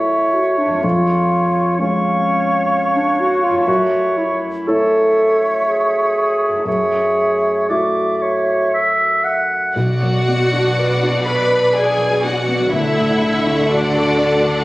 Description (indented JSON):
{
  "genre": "cinematic",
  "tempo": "57-65 BPM",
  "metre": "3/4",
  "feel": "rubato",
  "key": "F# minor",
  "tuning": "A4 = 440 Hz",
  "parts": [
    { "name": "mellow clarinet", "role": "second line", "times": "0.0-8.7 s", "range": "C#4 to A4", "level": "-19 LUFS", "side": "equal", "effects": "none" },
    { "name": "mellow hollow concert flute", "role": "second line", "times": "0.0-9.4 s", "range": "E5 to E#5", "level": "-20 LUFS", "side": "equal", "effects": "none" },
    { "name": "warm oboe", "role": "second line", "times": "0.0-9.8 s", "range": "C#5 to F#5", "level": "-19 LUFS", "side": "right 1 dB", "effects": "none" },
    { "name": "dark grand piano", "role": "accompaniment", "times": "0.0-14.6 s", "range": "B1 to E5", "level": "-22 LUFS", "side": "equal", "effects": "none" },
    { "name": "concert harp", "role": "arpeggios", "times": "0.0-14.6 s", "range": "E#2 to C#6", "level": "-29 LUFS", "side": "left 2 dB", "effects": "none" },
    { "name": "rich studio violin section", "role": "melody", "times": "9.8-14.6 s", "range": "D5 to F#5", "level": "-25 LUFS", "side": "left 2 dB", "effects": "none" },
    { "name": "rich studio violin section", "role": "second line", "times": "9.8-14.6 s", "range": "D5 to B5", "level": "-22 LUFS", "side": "left 2 dB", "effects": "none" },
    { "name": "rich studio viola section", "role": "accompaniment", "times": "9.8-14.6 s", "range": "D4 to B4", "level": "-19 LUFS", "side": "right 1 dB", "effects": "none" },
    { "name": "clear studio cello section", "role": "bass", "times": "9.8-14.6 s", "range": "B2 to D3", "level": "-24 LUFS", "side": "right 1 dB", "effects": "none" },
    { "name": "rich studio double bass section", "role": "bass", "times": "9.8-14.6 s", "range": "B1 to D2", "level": "-24 LUFS", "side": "right 1 dB", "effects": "none" }
  ],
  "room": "moderate scoring stage reverb, RT60 1.8 s",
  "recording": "recorded on a phone in the room, studio reverb",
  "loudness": "-14 LUFS",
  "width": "side -19 dB against mid",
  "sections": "0.0-9.8 A section; 9.8-14.6 B section",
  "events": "none",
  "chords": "0.0 F#m7; 9.8 Bm; 12.7 D"
}